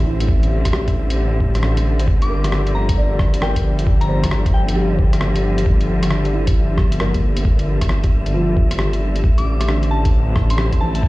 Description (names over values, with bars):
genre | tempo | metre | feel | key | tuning
future garage | 134 BPM | 4/4 | swing 64% on 16ths | G dorian | A4 = 441 Hz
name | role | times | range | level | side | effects
felt-muted upright piano | accompaniment | 0.0-11.1 s | D3 to D5 | -27 LUFS | right 1 dB | vintage 12-bit sampler grit, sidechain pumping, analog delay
warm symphonic string section | sustained chords | 0.0-11.1 s | D3 to E4 | -24 LUFS | left 1 dB | sidechain pumping
swelling detuned saw bass | bass | 0.0-11.1 s | G1 to A1 | -19 LUFS | equal | sidechain pumping
wind-like tuned noise texture | texture | 0.0-11.1 s | E5 | -34 LUFS | equal | built-in reverb
lo-fi sampler-style drum kit | drums | 0.2-11.0 s | hi-hat, rim click | -26 LUFS | equal | vintage 12-bit sampler grit, studio reverb
electronic kick drum | drums | 0.3-11.1 s | none | -17 LUFS | equal | vintage 12-bit sampler grit, studio reverb
soft synth bell | melody | 2.2-4.9, 9.4-11.0 s | G5 to D6 | -29 LUFS | left 2 dB | chorus, tape echo
room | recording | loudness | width
digital ambience | played on a big sound system in a bare room, large studio reverb | -15 LUFS | side -19 dB against mid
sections
0.0-11.1 A section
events
none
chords
0.0 Am7; 2.1 Gm7; 9.2 Am7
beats
| 0.28 0.73 1.18 1.63 | 2.08 2.52 2.97 3.42 | 3.87 4.31 4.76 5.21 | 5.66 6.11 6.55 7.00 | 7.45 7.90 8.34 8.79 | 9.24 9.69 10.13 10.58 | 11.03